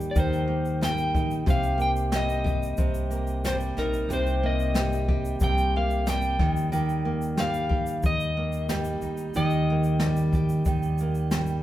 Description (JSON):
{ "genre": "acoustic pop", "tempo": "91 BPM", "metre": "4/4", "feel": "straight", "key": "unclear", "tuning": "A4 = 441 Hz", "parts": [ { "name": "nylon-string guitar", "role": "accompaniment", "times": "0.0-11.6 s", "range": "C3 to G4", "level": "-27 LUFS", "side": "right 1 dB", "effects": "none" }, { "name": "upright bass", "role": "bass", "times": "0.0-11.6 s", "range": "Bb1 to Eb2", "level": "-29 LUFS", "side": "equal", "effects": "none" }, { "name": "jazz brush drum kit", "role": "drums", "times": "0.0-11.6 s", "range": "kick drum, shaker, snare drum", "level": "-28 LUFS", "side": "left 1 dB", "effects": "none" }, { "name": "electric slide guitar", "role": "melody", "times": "0.1-11.3 s", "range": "Bb4 to G5", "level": "-30 LUFS", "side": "left 2 dB", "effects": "none" } ], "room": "wet stone room reverb, RT60 1.3 s", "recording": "band playing live in one room", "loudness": "-23 LUFS", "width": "side -13 dB against mid", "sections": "0.0-11.6 A section", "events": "none", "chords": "0.0 Eb; 1.5 Cm7; 6.4 Eb", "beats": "0.15 0.81 | 1.47 2.12 2.78 3.44 | 4.09 4.75 5.41 6.06 | 6.72 7.38 8.03 8.69 | 9.35 10.00 10.66 11.32" }